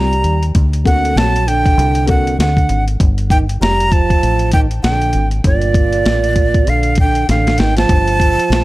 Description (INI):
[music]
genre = hip hop, jazz-hop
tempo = 98 BPM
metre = 4/4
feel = swing 59% on 16ths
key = G minor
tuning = A4 = 439 Hz
[part]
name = breathy bright jazz flute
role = melody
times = 0.0-8.6 s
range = D5 to Bb5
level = -17 LUFS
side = right 1 dB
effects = none
[part]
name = breathy trombone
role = second line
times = 0.0-8.6 s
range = Bb2 to G3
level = -20 LUFS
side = right 5 dB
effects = none
[part]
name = dark concert grand piano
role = accompaniment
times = 0.0-2.3 s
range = Bb3 to A4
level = -22 LUFS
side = left 4 dB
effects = none
[part]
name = deep dub fingered electric bass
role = bass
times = 0.0-8.6 s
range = F1 to Eb2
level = -16 LUFS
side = equal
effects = none
[part]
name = boom bap sampler-style drum kit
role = drums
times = 0.1-8.6 s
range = hi-hat, kick drum, snare drum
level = -15 LUFS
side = equal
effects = none
[sound]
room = studio reverb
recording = dark, warm production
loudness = -11 LUFS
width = side -18 dB against mid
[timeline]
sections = 0.0-7.9 A section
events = drum fill 7.3-7.9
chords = 0.0 Cm7; 0.5 D7b13; 3.0 Gm9